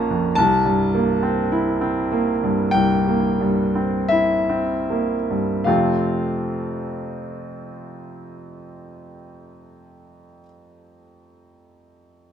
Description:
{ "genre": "classical, romantic nocturne for solo piano", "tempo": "36-55 BPM", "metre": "4/4", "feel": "rubato", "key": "F major", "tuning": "A4 = 437 Hz", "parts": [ { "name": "clear grand piano", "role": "solo", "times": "0.0-12.3 s", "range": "Bb1 to C6", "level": "-19 LUFS", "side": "equal", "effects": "none" } ], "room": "moderate stone room reverb, RT60 1.4 s", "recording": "none", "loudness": "-18 LUFS", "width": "side -8 dB against mid", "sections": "0.0-5.7 A section; 5.7-11.4 B section", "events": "slowing down 0.0-5.7", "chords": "0.4 C7; 5.7 F" }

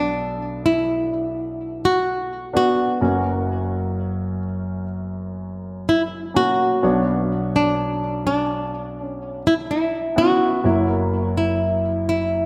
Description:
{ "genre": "pop", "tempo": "63 BPM", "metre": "4/4", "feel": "straight", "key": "B minor", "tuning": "A4 = 440 Hz", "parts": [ { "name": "flamenco guitar", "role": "melody", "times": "0.0-12.5 s", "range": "D4 to F#4", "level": "-23 LUFS", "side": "equal", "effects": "none" }, { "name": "warm grand piano", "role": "accompaniment", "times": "0.0-12.5 s", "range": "F#1 to C#5", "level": "-25 LUFS", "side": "equal", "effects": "lush chorus" } ], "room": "wet lush hall reverb, RT60 1.9 s, studio ambience", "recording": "dreamy mix soaked in reverb", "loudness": "-21 LUFS", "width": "mono", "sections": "0.0-12.5 A section", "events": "none", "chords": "0.0 Bm7; 3.0 F#; 6.8 Bmadd9; 10.6 F#7" }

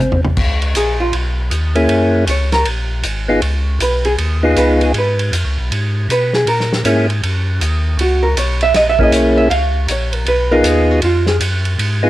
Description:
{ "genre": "soul jazz organ trio", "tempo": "158 BPM", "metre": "4/4", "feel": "swing 64% on 8ths", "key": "Db mixolydian", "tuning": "A4 = 439 Hz", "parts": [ { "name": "percussive tonewheel organ", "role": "melody", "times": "0.0-12.1 s", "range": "Bb3 to Ab4", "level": "-14 LUFS", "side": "left 1 dB", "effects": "slow rotary speaker, cassette tape" }, { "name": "tonewheel organ", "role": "bass", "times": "0.0-12.1 s", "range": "Ab1 to Cb3", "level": "-17 LUFS", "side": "equal", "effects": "overdrive, slow rotary speaker" }, { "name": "warm soul drum kit", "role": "drums", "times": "0.0-11.9 s", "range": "crash cymbal, hi-hat, kick drum, ride cymbal, snare drum, toms", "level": "-21 LUFS", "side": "right 1 dB", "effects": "cassette tape" }, { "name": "archtop guitar, miked and amplified", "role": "accompaniment", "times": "0.8-11.4 s", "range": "F4 to F5", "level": "-16 LUFS", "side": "right 2 dB", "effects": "cassette tape" } ], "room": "small room ambience", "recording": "home recording on cassette", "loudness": "-13 LUFS", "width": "side -15 dB against mid", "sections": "0.4-12.1 A section", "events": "drum fill 0.0-0.4; hollow-body jazz guitar solo 0.4-12.1", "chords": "0.4 Dbsus2; 1.9 Gb9; 3.4 Db9; 6.5 Gb9; 9.5 Db9" }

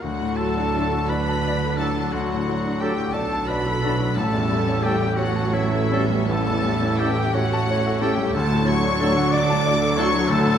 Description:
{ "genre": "classical, romantic movement for piano and orchestra", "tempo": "52-63 BPM (dotted quarters)", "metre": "12/8", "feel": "rubato", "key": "D major", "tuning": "A4 = 439 Hz", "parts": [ { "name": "clear baby grand piano", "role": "melody", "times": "0.0-10.6 s", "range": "A1 to A5", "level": "-24 LUFS", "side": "left 3 dB", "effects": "none" }, { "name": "rich symphonic violin section", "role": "melody", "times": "0.0-10.6 s", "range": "E5 to D6", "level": "-30 LUFS", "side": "left 3 dB", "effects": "none" }, { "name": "clear oboe", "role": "second line", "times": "0.0-10.6 s", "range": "E4 to D5", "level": "-32 LUFS", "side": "equal", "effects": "none" }, { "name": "mellow clarinet", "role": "second line", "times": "0.0-10.6 s", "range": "E4 to D5", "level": "-31 LUFS", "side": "left 1 dB", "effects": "none" }, { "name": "rich symphonic violin section", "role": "second line", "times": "0.0-10.6 s", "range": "C#4 to A4", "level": "-32 LUFS", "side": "left 3 dB", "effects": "none" }, { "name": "silver concert flute", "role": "second line", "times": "0.0-10.6 s", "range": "E5 to D6", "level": "-31 LUFS", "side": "left 2 dB", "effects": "none" }, { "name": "rich studio viola section", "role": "accompaniment", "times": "0.0-10.6 s", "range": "E3 to B3", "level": "-30 LUFS", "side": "right 1 dB", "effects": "none" }, { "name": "dark tuba", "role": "bass", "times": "0.0-10.6 s", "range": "A1 to D2", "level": "-30 LUFS", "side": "right 4 dB", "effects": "none" }, { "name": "rich symphonic cello section", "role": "bass", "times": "0.0-10.6 s", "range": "D2 to D3", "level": "-29 LUFS", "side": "right 4 dB", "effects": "none" }, { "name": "warm symphonic double bass section", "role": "bass", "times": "0.0-10.6 s", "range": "A1 to D2", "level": "-30 LUFS", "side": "right 4 dB", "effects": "none" }, { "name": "warm trombone section", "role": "sustained chords", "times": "0.7-10.1 s", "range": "A2 to G3", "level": "-35 LUFS", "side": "right 4 dB", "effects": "none" }, { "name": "clear trumpet", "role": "stabs", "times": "0.7-10.1 s", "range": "A4", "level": "-34 LUFS", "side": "right 1 dB", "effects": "none" }, { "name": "mellow French horn section", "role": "sustained chords", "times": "0.8-10.1 s", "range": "A3 to D4", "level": "-34 LUFS", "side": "left 4 dB", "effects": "none" } ], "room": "moderate concert hall reverb, RT60 2.3 s", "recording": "none", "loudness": "-19 LUFS", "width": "side -8 dB against mid", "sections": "0.0-10.6 A section", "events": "none", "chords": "0.0 D; 4.2 A7; 8.4 D" }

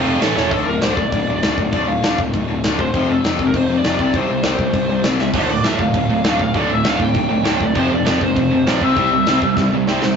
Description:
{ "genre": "punk rock", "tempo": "199 BPM", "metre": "4/4", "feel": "straight", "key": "D minor", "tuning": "A4 = 440 Hz", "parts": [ { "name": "lead guitar through a small cranked amp", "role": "melody", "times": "0.0-10.1 s", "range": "A4 to G5", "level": "-22 LUFS", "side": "left 2 dB", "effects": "overdrive" }, { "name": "tight distorted guitar", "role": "riff", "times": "0.0-10.2 s", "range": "D2 to A4", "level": "-20 LUFS", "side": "left 4 dB", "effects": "distortion" }, { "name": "tight distorted guitar", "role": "riff", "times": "0.0-0.5, 5.3-10.2 s", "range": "D2 to C4", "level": "-20 LUFS", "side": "right 7 dB", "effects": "distortion" }, { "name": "fuzz picked electric bass", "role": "bass", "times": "0.1-10.1 s", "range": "D1 to C2", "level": "-25 LUFS", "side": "equal", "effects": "overdrive" }, { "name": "big rock drum kit", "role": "drums", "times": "0.1-10.1 s", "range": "crash cymbal, kick drum, snare drum", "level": "-21 LUFS", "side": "equal", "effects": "none" } ], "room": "light reverb", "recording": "rough rehearsal-room recording, nothing above 7.8 kHz", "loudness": "-15 LUFS", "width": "side -6 dB against mid", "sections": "0.5-10.2 A section", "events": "drum fill 0.4, 5.2, 9.6-10.2", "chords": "0.2 A; 0.5 D5; 2.9 F; 4.0 C5; 5.3 Dm; 7.8 F5; 8.8 C" }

